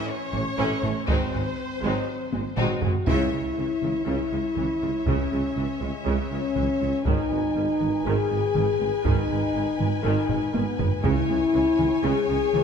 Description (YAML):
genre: cinematic, epic orchestral film score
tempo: 120 BPM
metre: 4/4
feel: straight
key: C# minor from 3.1 s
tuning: A4 = 435 Hz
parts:
  - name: rich studio violin section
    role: melody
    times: 0.0-12.6 s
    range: C5 to G#5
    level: -36 LUFS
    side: left 2 dB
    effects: none
  - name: clear studio violin section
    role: second line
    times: 0.0-12.6 s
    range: Ab3 to C#5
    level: -34 LUFS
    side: left 3 dB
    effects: none
  - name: clear symphonic viola section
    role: accompaniment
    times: 0.0-12.6 s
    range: C#3 to Ab3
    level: -34 LUFS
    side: right 2 dB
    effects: none
  - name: dark French horn section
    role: sustained chords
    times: 0.0-12.6 s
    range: G#3 to G#4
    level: -26 LUFS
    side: left 4 dB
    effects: none
  - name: clear symphonic double bass section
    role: bass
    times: 0.3-12.6 s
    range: Ab1 to C#2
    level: -32 LUFS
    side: right 4 dB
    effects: none
  - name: mellow tuba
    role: bass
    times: 0.3-12.6 s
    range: Ab1 to C#2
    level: -32 LUFS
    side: right 5 dB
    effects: none
  - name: rich symphonic cello section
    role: bass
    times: 0.3-12.6 s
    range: Ab2 to C#3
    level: -32 LUFS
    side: right 4 dB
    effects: none
  - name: taiko ensemble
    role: drums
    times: 0.3-12.6 s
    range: none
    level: -28 LUFS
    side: equal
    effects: none
  - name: timpani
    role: percussion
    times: 11.0-11.8 s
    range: C#3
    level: -33 LUFS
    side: right 3 dB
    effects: none
room: moderate scoring stage reverb, RT60 1.8 s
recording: none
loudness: -22 LUFS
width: side -7 dB against mid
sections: 0.0-3.1 A section; 3.1-12.6 B section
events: drum fill 2.3-3.1, 10.3-11.0; band accent 3.1-3.6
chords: 0.0 A; 1.1 Ab7; 3.1 C#m; 7.1 G#m; 11.0 C#m